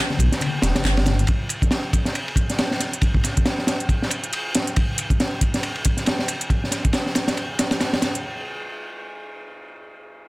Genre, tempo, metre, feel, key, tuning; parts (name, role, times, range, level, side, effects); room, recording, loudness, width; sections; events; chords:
breakbeat, breaks; 138 BPM; 4/4; swing 58% on 16ths; E minor; A4 = 440 Hz
crunchy breakbeat drum kit; drums; 0.1-8.1 s; kick drum, ride cymbal, snare drum; -21 LUFS; equal
congas; percussion; 0.1-1.2 s; -28 LUFS; left 4 dB
dark detuned saw bass; bass; 0.2-1.2 s; E1 to B1; -20 LUFS; equal
garage drum kit; drums; 0.2-8.2 s; handclaps, hi-hat; -27 LUFS; right 1 dB
little or no reverb; -19 LUFS; side -20 dB against mid
0.0-8.2 A section; 8.2-10.3 B section